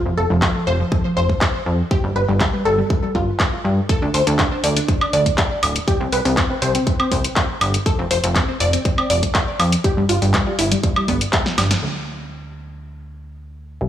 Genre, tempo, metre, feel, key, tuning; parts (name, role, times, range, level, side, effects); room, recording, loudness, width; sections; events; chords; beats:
progressive house; 121 BPM; 4/4; straight; A4 = 441 Hz
wide unison pluck; arpeggios; 0.1-11.7 s; F3 to D5; -21 LUFS; equal; cassette tape, sidechain pumping, tape echo
plucky analog bass; bass; 0.1-13.9 s; D1 to G2; -21 LUFS; equal; sidechain pumping
electronic kick drum; drums; 0.4-11.4 s; -20 LUFS; equal
house drum kit; drums; 0.4-11.9 s; crash cymbal, handclaps, hi-hat, snare drum, woodblock; -21 LUFS; equal; low-pass filter on snare, sidechain pumping on hats, low-pass filter on hats, sidechain pumping on perc, low-pass filter on perc, sidechain pumping on cymbals, low-pass filter on cymbals
light reverb, digital ambience; studio ambience; -16 LUFS; side -11 dB against mid
0.0-11.8 A section; 11.8-13.9 B section
drum fill 11.5-11.8; band accent 11.7
0.0 F5; 1.9 G7(no3); 3.9 D5; 5.9 C5; 7.9 F5; 9.8 G; 11.8 N.C.
0.42 0.92 1.41 | 1.91 2.41 2.90 3.40 | 3.89 4.39 4.88 5.38 | 5.88 6.37 6.87 7.37 | 7.86 8.36 8.85 9.35 | 9.84 10.34 10.84 11.33 | 11.83 12.32 12.82 13.31 | 13.81